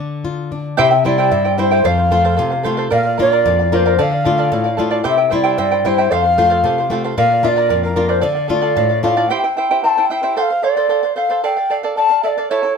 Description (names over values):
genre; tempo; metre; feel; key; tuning
andean folk; 113 BPM; 2/4; straight; D minor; A4 = 439 Hz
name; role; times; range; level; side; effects
flamenco guitar; accompaniment; 0.0-9.3 s; F2 to F4; -19 LUFS; left 4 dB; none
mellow large quena; melody; 0.8-12.7 s; Bb4 to Bb5; -15 LUFS; left 1 dB; none
charango; accompaniment; 0.8-12.8 s; E4 to A5; -19 LUFS; right 5 dB; none
room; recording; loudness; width
moderate studio reverb, RT60 0.5 s; minimal, uncompressed stereo recording; -13 LUFS; side -6 dB against mid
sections
0.8-9.3 A section; 9.3-12.8 B section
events
none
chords
0.0 Dm; 0.8 C; 1.9 F; 2.9 Bb; 4.0 Dm; 5.0 C; 6.1 F; 7.2 Bb; 8.2 Dm; 9.3 C; 10.4 F; 11.4 Dm